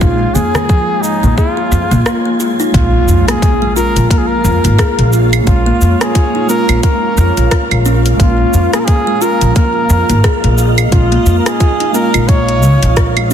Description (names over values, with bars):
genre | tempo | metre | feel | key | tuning
organic downtempo | 88 BPM | 4/4 | swing 58% on 16ths | Bb minor pentatonic | A4 = 440 Hz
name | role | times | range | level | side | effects
trumpet with bucket mute | melody | 0.0-13.3 s | Eb4 to Db5 | -17 LUFS | equal | digital delay
granular cloud pad | sustained chords | 0.0-13.3 s | Ab3 to F5 | -20 LUFS | equal | built-in reverb, sidechain pumping
kalimba | arpeggios | 0.0-13.3 s | F3 to Ab4 | -18 LUFS | left 2 dB | digital delay
upright bass | bass | 0.0-13.3 s | Ab1 to F2 | -12 LUFS | equal | sidechain pumping
afro-pop drum kit | drums | 0.0-13.3 s | claves, hi-hat, rim click, shaker | -20 LUFS | right 1 dB | soft clipping on snare, studio reverb
electronic kick drum | drums | 0.0-13.1 s | none | -13 LUFS | equal | overdrive, studio reverb
wind-like tuned noise texture | texture | 0.0-13.3 s | F4 to Ab5 | -26 LUFS | right 1 dB | built-in reverb
congas | percussion | 0.3-2.0 s | none | -20 LUFS | right 1 dB | none
muted felt-like synth keys | accompaniment | 2.7-13.3 s | Ab3 to F4 | -22 LUFS | right 6 dB | chorus, sidechain pumping, digital delay
impact | sound effects | 2.7-5.5 s | none | -18 LUFS | equal | none
room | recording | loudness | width
light reverb | dense, heavily limited modern master | -9 LUFS | side -9 dB against mid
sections
0.0-2.7 A section; 2.7-13.3 B section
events
impact 2.7-5.5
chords
0.0 Bbm7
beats
| 0.01 0.69 1.38 2.06 | 2.74 3.42 4.10 4.79 | 5.47 6.15 6.83 7.51 | 8.19 8.88 9.56 10.24 | 10.92 11.60 12.29 12.97